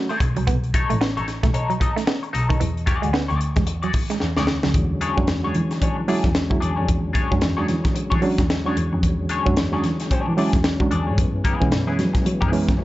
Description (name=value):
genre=funk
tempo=112 BPM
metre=4/4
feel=swing 60% on 16ths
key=unclear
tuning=A4 = 440 Hz
part: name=reed electric piano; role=stabs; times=0.0-0.4, 5.2-12.7 s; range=E3 to F#4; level=-24 LUFS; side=right 3 dB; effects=none
part: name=electric guitar at the edge of break-up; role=accompaniment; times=0.1-12.8 s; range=B3 to D#5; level=-28 LUFS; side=left 4 dB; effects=wah, spring reverb
part: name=semi-hollow electric guitar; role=riff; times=0.1-4.7 s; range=D#3 to B3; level=-28 LUFS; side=right 7 dB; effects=none
part: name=crisp fusion drum kit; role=drums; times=0.1-12.8 s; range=hi-hat, kick drum, snare drum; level=-22 LUFS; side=equal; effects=none
part: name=dark double bass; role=bass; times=0.2-12.8 s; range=A1 to F#3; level=-24 LUFS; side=equal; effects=none
part: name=tonewheel organ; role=sustained chords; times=4.7-12.8 s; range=D3 to C#4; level=-29 LUFS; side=left 1 dB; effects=chorus vibrato, slow rotary speaker
room=light reverb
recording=dark, warm production, nothing above 7.9 kHz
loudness=-18 LUFS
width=side -16 dB against mid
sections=0.0-4.7 A section; 4.7-12.8 B section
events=drum fill 4.2-4.7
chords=0.0 B9; 2.6 E9; 4.7 E13; 11.2 F#9sus4